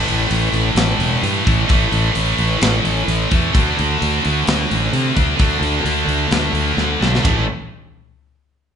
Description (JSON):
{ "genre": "hard rock", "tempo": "129 BPM", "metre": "4/4", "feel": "straight", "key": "unclear", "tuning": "A4 = 442 Hz", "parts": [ { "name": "high-gain distorted guitar", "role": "riff", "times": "0.0-7.4 s", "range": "A2 to D4", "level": "-20 LUFS", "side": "right 10 dB", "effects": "distortion" }, { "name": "scooped high-gain guitar", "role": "riff", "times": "0.0-7.4 s", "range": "A2 to D4", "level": "-21 LUFS", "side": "left 9 dB", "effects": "distortion" }, { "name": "fuzz fingered electric bass", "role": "bass", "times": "0.1-7.5 s", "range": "E1 to C3", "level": "-20 LUFS", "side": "equal", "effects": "overdrive" }, { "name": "tight metal drum kit", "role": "drums", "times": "0.1-7.4 s", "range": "hi-hat, kick drum, ride cymbal, snare drum, toms", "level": "-20 LUFS", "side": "left 1 dB", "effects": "none" } ], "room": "moderate large studio reverb, RT60 1.0 s", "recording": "band playing live in one room, nothing above 10.8 kHz", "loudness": "-14 LUFS", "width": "side -8 dB against mid", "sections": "0.0-7.2 A section; 7.2-8.8 B section", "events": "drum fill 6.8-7.2", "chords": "0.0 A5; 3.5 D5; 7.2 A5" }